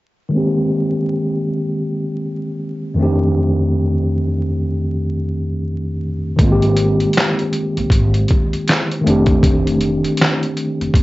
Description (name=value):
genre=lo-fi hip hop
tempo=79 BPM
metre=4/4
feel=swing 61% on 16ths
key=unclear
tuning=A4 = 440 Hz
part: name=mellow tine electric piano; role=accompaniment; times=0.3-11.0 s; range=F2 to G4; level=-17 LUFS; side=equal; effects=medium stereo tremolo, cassette tape, low-pass filter
part: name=upright bass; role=bass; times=6.4-11.0 s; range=F1 to Bb1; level=-19 LUFS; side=equal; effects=none
part: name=trip hop sampler-style drum kit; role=drums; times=6.4-11.0 s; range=handclaps, hi-hat, kick drum, snare drum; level=-16 LUFS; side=equal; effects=cassette tape
room=moderate studio reverb, RT60 0.5 s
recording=home recording on cassette, vinyl crackle, nothing above 7.7 kHz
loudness=-15 LUFS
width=side -18 dB against mid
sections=0.3-6.4 A section; 6.4-11.0 B section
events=filter sweep on tine electric piano 0.3-6.4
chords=0.3 Abmaj7; 3.0 F13; 6.4 Abmaj7; 9.0 F13